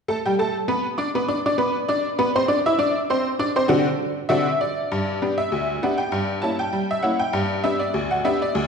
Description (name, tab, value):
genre	ragtime piano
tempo	99 BPM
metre	2/4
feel	swing 56% on 16ths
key	G major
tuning	A4 = 440 Hz
part	tack piano	solo	0.1-8.7 s	D2 to E6	-20 LUFS	equal	none
room	wet scoring stage reverb, RT60 1.8 s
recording	recorded in a church or concert hall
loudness	-20 LUFS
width	side -6 dB against mid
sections	0.1-4.9 A section; 4.9-8.7 B section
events	none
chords	0.1 G (rootless); 2.5 D7; 4.9 G; 6.1 Gdim7; 7.3 G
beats	| 0.07 0.68 | 1.28 1.89 | 2.49 3.09 | 3.70 4.31 | 4.92 5.53 | 6.13 6.74 | 7.34 7.95 | 8.55